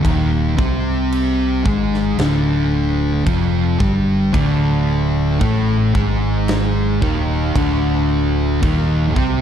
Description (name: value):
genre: stoner and doom metal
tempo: 56 BPM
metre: 4/4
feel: straight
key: D phrygian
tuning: A4 = 438 Hz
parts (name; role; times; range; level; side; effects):
- thick fuzz guitar; riff; 0.0-9.4 s; D2 to C4; -21 LUFS; left 8 dB; distortion
- thick fuzz guitar; riff; 0.0-9.4 s; D2 to C4; -20 LUFS; right 7 dB; distortion
- big rock drum kit; drums; 0.0-9.4 s; crash cymbal, kick drum, snare drum; -23 LUFS; equal; none
- fingered electric bass; bass; 0.1-9.4 s; D1 to C2; -21 LUFS; equal; overdrive
- overdriven semi-hollow guitar; riff; 4.3-9.4 s; D2 to C4; -23 LUFS; left 1 dB; none
room: little or no reverb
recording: dark, warm production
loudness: -15 LUFS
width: side -9 dB against mid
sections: 0.0-9.4 A section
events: none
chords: 0.0 Dm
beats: | 0.05 1.12 2.20 3.27 | 4.34 5.41 6.48 7.55 | 8.62